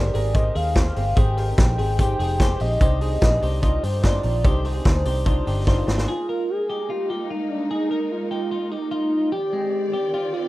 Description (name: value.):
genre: jangly indie pop.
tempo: 147 BPM.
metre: 4/4.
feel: straight.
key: unclear.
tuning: A4 = 440 Hz.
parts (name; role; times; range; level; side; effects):
warbly nostalgic lead; melody; 0.0-10.5 s; D4 to G5; -25 LUFS; equal; chorus.
bright upright piano; accompaniment; 0.0-6.1 s; D4 to Eb5; -30 LUFS; left 3 dB; none.
fingerpicked twelve-string acoustic guitar; accompaniment; 0.0-6.1 s; C3 to G4; -34 LUFS; right 4 dB; none.
twelve-string electric guitar; arpeggios; 0.0-10.5 s; Ab3 to Bb4; -32 LUFS; left 2 dB; none.
vintage muted fingered electric bass; bass; 0.0-6.0 s; F1 to G2; -23 LUFS; equal; tube saturation.
vintage drum kit; drums; 0.1-6.1 s; hi-hat, kick drum, snare drum; -20 LUFS; equal; none.
dark studio string section; sustained chords; 6.1-10.5 s; Eb3 to D5; -32 LUFS; equal; none.
room: light reverb.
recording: rough home demo mix.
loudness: -19 LUFS.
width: side -17 dB against mid.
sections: 0.0-6.1 A section; 6.1-10.5 B section.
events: drum fill 5.7-6.1.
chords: 0.0 Abmaj7; 2.8 Cmadd9; 6.1 Bb7sus4; 9.3 Cmadd9.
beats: 0.35 0.76 | 1.17 1.58 1.99 2.40 | 2.81 3.22 3.63 4.04 | 4.45 4.86 5.26 5.67 | 6.08 6.49 6.89 7.30 | 7.70 8.11 8.51 8.92 | 9.32 9.73 10.13.